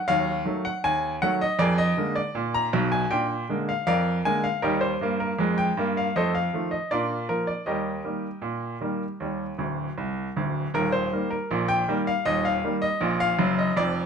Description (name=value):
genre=ragtime piano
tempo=79 BPM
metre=2/4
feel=straight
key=Eb major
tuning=A4 = 440 Hz
part: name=bright baby grand piano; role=solo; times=0.0-14.1 s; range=D1 to Bb5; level=-23 LUFS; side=equal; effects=none
room=moderate studio reverb, RT60 0.7 s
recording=none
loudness=-23 LUFS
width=side -6 dB against mid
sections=0.0-10.7 A section; 10.7-14.1 A section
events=grand piano fill 9.6-10.7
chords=0.0 Ebdim; 1.6 Bb7/F; 3.1 Bb7; 4.6 Eb; 6.1 F7; 6.9 Bb; 7.7 Eb